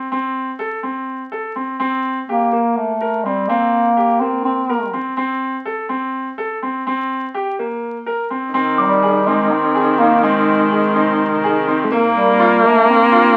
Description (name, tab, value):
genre	contemporary instrumental, chamber music in an uneven meter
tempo	249 BPM (eighths)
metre	7/8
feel	straight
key	unclear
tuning	A4 = 441 Hz
part	bright concert grand piano	arpeggios	0.0-13.3 s	Bb3 to Bb4	-23 LUFS	equal	none
part	warm bass clarinet	melody	2.3-5.0, 8.8-13.4 s	G3 to C4	-19 LUFS	equal	none
part	warm viola	second line	8.5-13.4 s	Eb3 to Bb3	-17 LUFS	equal	none
part	shimmering ambient pad	sustained chords	9.7-13.4 s	C3 to Eb4	-30 LUFS	equal	chorus, built-in reverb
part	glockenspiel with rubber mallets	texture	8.8-10.6 s	D6	-26 LUFS	equal	none
room	moderate small room reverb, RT60 0.5 s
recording	very old 78 rpm record, vinyl crackle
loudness	-17 LUFS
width	mono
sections	0.0-8.5 A section; 8.5-13.4 B section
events	none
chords	0.0 Am/C; 1.8 C5; 5.2 Am/C; 6.9 C5; 8.5 Ab; 11.9 Bbadd9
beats	| 0.11 0.35 0.59 0.84 1.08 1.32 1.56 | 1.80 2.04 2.28 2.52 2.77 3.01 3.25 | 3.49 3.73 3.97 4.21 4.45 4.69 4.93 | 5.17 5.42 5.66 5.90 6.14 6.38 6.62 | 6.86 7.10 7.34 7.58 7.82 8.06 8.30 | 8.54 8.79 9.03 9.27 9.51 9.75 9.99 | 10.23 10.47 10.71 10.95 11.19 11.44 11.68 | 11.92 12.16 12.40 12.64 12.88 13.12 13.36